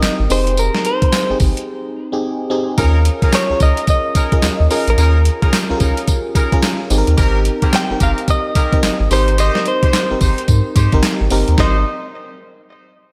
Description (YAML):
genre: R&B, new jack swing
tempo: 109 BPM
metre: 4/4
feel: swing 62% on 16ths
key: Ab major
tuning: A4 = 437 Hz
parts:
  - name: direct-recorded clean electric guitar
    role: melody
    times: 0.0-11.8 s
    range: Bb4 to G5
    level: -22 LUFS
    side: equal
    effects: spring reverb, slapback echo, tape echo
  - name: FM electric piano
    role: accompaniment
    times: 0.0-11.8 s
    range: C4 to Bb4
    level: -24 LUFS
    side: equal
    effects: chorus, slapback echo
  - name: round analog bass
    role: bass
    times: 0.0-11.8 s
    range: F1 to Ab2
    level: -17 LUFS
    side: equal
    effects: none
  - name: crisp 8-bit digital drum machine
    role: drums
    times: 0.0-11.7 s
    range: handclaps, hi-hat, kick drum, snare drum, tambourine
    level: -19 LUFS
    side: equal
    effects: none
  - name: warm horn section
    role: stabs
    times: 2.8-11.8 s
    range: C4 to C5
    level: -27 LUFS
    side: equal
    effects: none
room: moderate concert hall reverb, RT60 2.0 s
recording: big arena sound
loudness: -15 LUFS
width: mono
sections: 0.0-11.6 A section; 11.6-13.1 B section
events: break 1.7-2.8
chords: 0.3 Fm9; 2.8 Eb7sus4; 6.9 Abmaj9; 11.6 Abmaj7